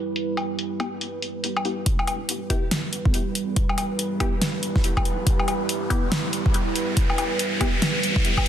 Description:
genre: deep dubstep.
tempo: 141 BPM.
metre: 4/4.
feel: swing 61% on 16ths, half-time.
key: E minor.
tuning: A4 = 438 Hz.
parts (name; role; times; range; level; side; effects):
deep dark ambient pad; sustained chords; 0.0-8.5 s; G3 to B4; -28 LUFS; right 3 dB; chorus, built-in reverb.
deep house drum kit; drums; 0.2-8.5 s; hi-hat, snare drum, woodblock; -26 LUFS; left 1 dB; low-pass filter on hats, low-pass filter on perc, low-pass filter on snare, low-pass filter on room.
filtered dub chord stab; stabs; 0.8-7.7 s; B3 to G4; -33 LUFS; left 2 dB; phaser, cassette tape, dub echo.
deep soft wobble bass; bass; 1.9-8.2 s; E1 to E2; -40 LUFS; equal; none.
electronic kick drum; drums; 1.9-8.4 s; none; -22 LUFS; equal; none.
riser; sound effects; 3.3-8.5 s; none; -30 LUFS; equal; none.
room: light reverb, digital ambience.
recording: dense, heavily limited modern master, low-pass filter.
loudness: -21 LUFS.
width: side -10 dB against mid.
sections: 0.0-1.9 A section; 1.9-8.5 B section.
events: build-up 1.9-8.5; riser 3.3-8.5.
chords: 0.0 Em.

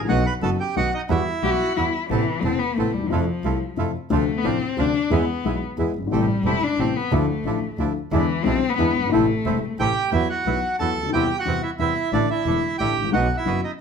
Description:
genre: tango.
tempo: 180 BPM.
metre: 3/4.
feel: rubato.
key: A minor, E minor from 10.1 s.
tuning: A4 = 440 Hz.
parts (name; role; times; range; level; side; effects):
dark upright piano; accompaniment; 0.0-13.6 s; E1 to G#4; -24 LUFS; left 6 dB; none.
clear double bass; bass; 0.0-13.6 s; E1 to F2; -26 LUFS; right 4 dB; none.
bandoneon; melody; 0.1-1.7, 9.8-13.7 s; D4 to B5; -24 LUFS; right 4 dB; slapback echo.
bandoneon; stabs; 0.1-13.6 s; F3 to A4; -30 LUFS; right 6 dB; none.
warm cello; second line; 1.4-9.8 s; E3 to G4; -24 LUFS; left 5 dB; none.
room: moderate studio reverb, RT60 0.8 s.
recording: none.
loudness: -20 LUFS.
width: side -6 dB against mid.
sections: 0.0-2.1 A section; 2.1-10.1 B section; 10.1-13.8 A section.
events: cello solo 2.1-10.1.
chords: 0.1 B; 1.1 Emadd9; 2.1 Amadd9; 3.1 Fmaj7; 4.1 Dm7; 5.1 E; 6.1 Am7; 7.1 Dmadd9; 8.1 E7; 9.1 Am; 10.1 Esus2; 11.1 Cmaj7/E; 12.1 Asus4; 13.1 B.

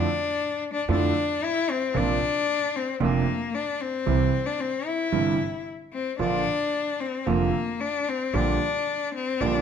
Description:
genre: tango.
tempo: 113 BPM.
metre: 4/4.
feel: rubato.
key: unclear.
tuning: A4 = 440 Hz.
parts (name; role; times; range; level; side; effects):
clear cello; second line; 0.0-9.6 s; Bb3 to E4; -26 LUFS; left 5 dB; none.
warm concert grand piano; accompaniment; 0.0-9.6 s; F1 to G4; -26 LUFS; right 5 dB; none.
upright bass; bass; 0.0-9.6 s; F1 to F2; -28 LUFS; right 2 dB; none.
room: wet large studio reverb, RT60 1.1 s.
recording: none.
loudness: -23 LUFS.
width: side -7 dB against mid.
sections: 0.0-9.6 A section.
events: cello solo 0.0-9.6.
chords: 0.0 Dmadd9; 1.9 Bbadd9; 4.1 C; 6.2 Bb; 8.3 Gm/Bb.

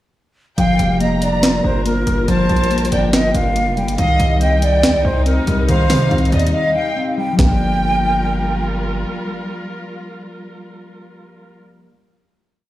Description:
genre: hip hop, trap.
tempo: 141 BPM.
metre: 4/4.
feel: half-time.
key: G minor.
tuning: A4 = 444 Hz.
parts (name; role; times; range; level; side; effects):
breathy concert flute; melody; 0.6-8.6 s; Bb4 to G5; -20 LUFS; right 1 dB; digital delay.
warm studio violin section; second line; 0.6-8.6 s; Eb5 to Bb5; -26 LUFS; equal; digital delay.
mellow electric guitar; accompaniment; 0.6-12.0 s; Eb3 to Eb5; -20 LUFS; left 2 dB; none.
dark chamber string section; sustained chords; 0.6-11.6 s; C3 to Bb4; -27 LUFS; right 1 dB; none.
distorted 808-style bass; bass; 0.6-9.1 s; F1 to C3; -18 LUFS; equal; distortion.
trap drum kit; drums; 0.6-7.5 s; hi-hat, kick drum, snare drum; -19 LUFS; equal; none.
room: light reverb, studio ambience.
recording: played on a big sound system in a bare room, large studio reverb.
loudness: -14 LUFS.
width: side -14 dB against mid.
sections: 0.6-7.4 hook; 7.4-10.8 final chord.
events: break 6.5-7.4.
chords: 0.6 Gm7; 4.0 Cm; 7.4 Gm7.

